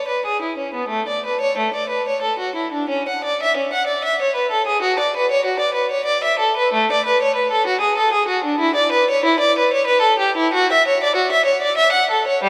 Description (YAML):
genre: classical, baroque-style suite movement for unaccompanied violin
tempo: 94 BPM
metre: 3/4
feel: rubato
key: A major, D major from 8.6 s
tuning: A4 = 439 Hz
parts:
  - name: warm violin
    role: solo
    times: 0.0-12.5 s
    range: G3 to F#5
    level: -18 LUFS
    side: equal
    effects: none
room: wet church reverb, RT60 3.4 s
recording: none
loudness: -18 LUFS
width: mono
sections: 0.9-12.5 A section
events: none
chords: none